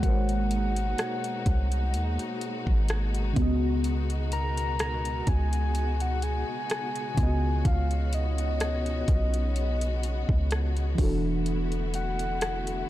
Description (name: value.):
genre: contemporary R&B.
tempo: 63 BPM.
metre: 4/4.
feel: swing 54% on 16ths.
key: unclear.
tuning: A4 = 442 Hz.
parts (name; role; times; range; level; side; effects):
soft octave-layered synth lead; melody; 0.0-12.9 s; D#5 to A#5; -34 LUFS; left 1 dB; chorus, tape echo.
mellow FM electric piano; accompaniment; 0.0-12.9 s; C#3 to D#5; -33 LUFS; equal; chorus, phaser.
warm symphonic string section; sustained chords; 0.0-12.9 s; B2 to F#4; -36 LUFS; left 2 dB; sidechain pumping.
warm 808-style bass; bass; 0.0-12.8 s; E1 to D#2; -27 LUFS; equal; none.
smooth R&B drum kit; drums; 0.0-12.9 s; hi-hat, kick drum, rim click; -29 LUFS; equal; none.
room: digital ambience.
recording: dark, warm production.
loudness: -25 LUFS.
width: side -14 dB against mid.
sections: 0.0-12.9 A section.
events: none.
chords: 0.0 G#9sus4; 3.4 C#9sus4; 11.0 E9sus4.